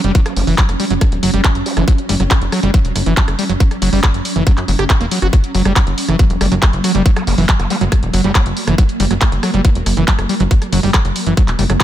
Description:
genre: psychedelic trance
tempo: 139 BPM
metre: 4/4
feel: straight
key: F# major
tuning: A4 = 440 Hz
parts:
  - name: swarming drone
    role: sustained chords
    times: 0.0-11.8 s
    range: F#3 to C#4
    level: -22 LUFS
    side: equal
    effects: built-in reverb, sidechain pumping
  - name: screaming distorted acid line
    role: riff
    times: 0.0-11.8 s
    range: E3 to G4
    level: -19 LUFS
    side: right 1 dB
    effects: distortion, chorus, auto-pan, sidechain pumping, digital delay
  - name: plucky analog bass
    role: bass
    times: 0.0-11.8 s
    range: E1 to F#2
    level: -17 LUFS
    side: equal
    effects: none
  - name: drum and bass drum kit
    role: drums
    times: 0.0-11.8 s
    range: handclaps, hi-hat, rim click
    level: -21 LUFS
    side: right 1 dB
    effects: small room ambience
  - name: electronic kick drum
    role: drums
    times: 0.1-11.8 s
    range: none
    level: -12 LUFS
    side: equal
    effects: small room ambience
  - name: vowel-sweep wobble bass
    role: second line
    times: 0.3-1.8, 7.2-8.4 s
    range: F#3 to A#3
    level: -31 LUFS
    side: right 2 dB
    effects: chorus, sidechain pumping, high-pass filter, ping-pong delay
room: little or no reverb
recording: none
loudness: -12 LUFS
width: side -12 dB against mid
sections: 0.0-11.8 A section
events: none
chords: 0.0 F#5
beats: | 0.15 0.58 1.01 1.45 | 1.88 2.31 2.74 3.17 | 3.60 4.04 4.47 4.90 | 5.33 5.76 6.19 6.62 | 7.06 7.49 7.92 8.35 | 8.78 9.21 9.65 10.08 | 10.51 10.94 11.37 11.80

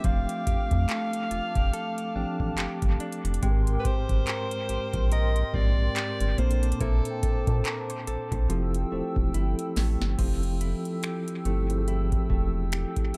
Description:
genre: contemporary R&B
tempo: 71 BPM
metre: 4/4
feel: swing 58% on 16ths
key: F major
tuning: A4 = 440 Hz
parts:
  - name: clear alto saxophone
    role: melody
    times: 0.0-8.1 s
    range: A4 to F5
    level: -35 LUFS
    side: equal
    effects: analog delay
  - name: mellow tine electric piano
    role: accompaniment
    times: 0.0-13.2 s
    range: Ab2 to A5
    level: -36 LUFS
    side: equal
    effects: none
  - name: hollow soft pad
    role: sustained chords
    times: 0.0-13.2 s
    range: A3 to E6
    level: -40 LUFS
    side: equal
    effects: chorus
  - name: direct-recorded clean electric guitar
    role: arpeggios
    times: 0.0-13.2 s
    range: F3 to C5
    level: -41 LUFS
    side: equal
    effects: analog delay
  - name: rubbery square bass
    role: bass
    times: 0.0-12.9 s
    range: E1 to Bb2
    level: -29 LUFS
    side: equal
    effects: none
  - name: booming analog drum machine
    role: drums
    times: 0.0-13.2 s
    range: crash cymbal, finger snaps, handclaps, hi-hat, kick drum, snare drum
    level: -30 LUFS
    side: equal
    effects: none
  - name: large celesta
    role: texture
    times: 0.0-9.3 s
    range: E5 to D6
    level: -45 LUFS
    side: equal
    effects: analog delay
room: little or no reverb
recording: echo-heavy mix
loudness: -27 LUFS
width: mono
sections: 0.0-10.2 A section; 10.2-13.2 B section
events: tine electric piano fill 1.7-3.4; drum fill 9.3-10.2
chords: 0.0 F69; 3.4 Abmaj9; 6.4 Bbmaj9; 8.5 Fmaj9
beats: | 0.04 0.89 1.73 2.58 | 3.42 4.27 5.11 5.96 | 6.80 7.65 8.49 9.34 | 10.19 11.03 11.88 12.72

